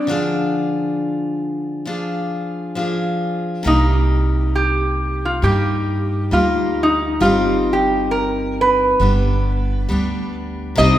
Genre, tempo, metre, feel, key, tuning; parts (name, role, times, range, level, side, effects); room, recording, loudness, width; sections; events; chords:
acoustic folk duo or small band; 67 BPM; 4/4; swing 57% on 8ths; C minor; A4 = 441 Hz
lap resonator guitar; melody; 0.0-11.0 s; D4 to Eb5; -19 LUFS; right 1 dB
picked steel-string acoustic guitar; accompaniment; 0.0-11.0 s; C3 to Ab4; -21 LUFS; left 1 dB
upright bass; bass; 3.7-11.0 s; G1 to G2; -20 LUFS; right 1 dB
moderate scoring stage reverb, RT60 1.9 s; recorded in a church or concert hall; -16 LUFS; side -12 dB against mid
0.0-10.8 A section
0.1 Ddim; 3.7 Cm7; 7.2 Cm/G; 9.0 G